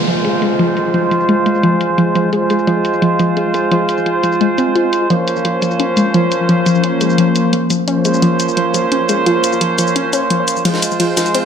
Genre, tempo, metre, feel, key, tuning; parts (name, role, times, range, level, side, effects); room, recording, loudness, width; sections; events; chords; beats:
dark technical drum and bass; 173 BPM; 4/4; straight; F minor; A4 = 438 Hz
sweeping resonant pad; sustained chords; 1.3-11.4 s; F3 to C5; -21 LUFS; left 3 dB; chorus
warm brass ensemble; stabs; 0.0-11.4 s; F3 to C5; -16 LUFS; right 2 dB; low-pass filter, ping-pong delay
downlifter; sound effects; 0.0-2.3 s; -22 LUFS; right 1 dB
warbly dusty pluck; arpeggios; 0.1-11.4 s; F3 to F4; -16 LUFS; left 1 dB; chorus, ping-pong delay
electronic hi-hat and shaker; drums; 0.1-11.4 s; -22 LUFS; left 2 dB; low-pass filter on perc, small room ambience, low-pass filter on hats, low-pass filter on snare
jungle sampler-style drum kit; drums; 10.7-11.4 s; ride cymbal, snare drum; -22 LUFS; right 2 dB; high-pass filter on cymbals, small room ambience, high-pass filter on snare, high-pass filter on room
wet plate reverb, RT60 1.6 s, digital ambience; -12 LUFS; side -7 dB against mid
0.0-11.4 A section
filter sweep on analog synth pad 0.0-11.4; filter sweep on synth arpeggio sound 0.0-11.4; filter sweep on brass ensemble 0.0-11.4
0.0 Fm; 5.1 Bbmadd9/F; 10.7 Fm
0.25 0.59 | 0.94 1.29 1.63 1.98 | 2.33 2.67 3.02 3.37 | 3.71 4.06 4.41 4.76 | 5.10 5.45 5.80 6.14 | 6.49 6.84 7.18 7.53 | 7.88 8.22 8.57 8.92 | 9.26 9.61 9.96 10.30 | 10.65 11.00 11.35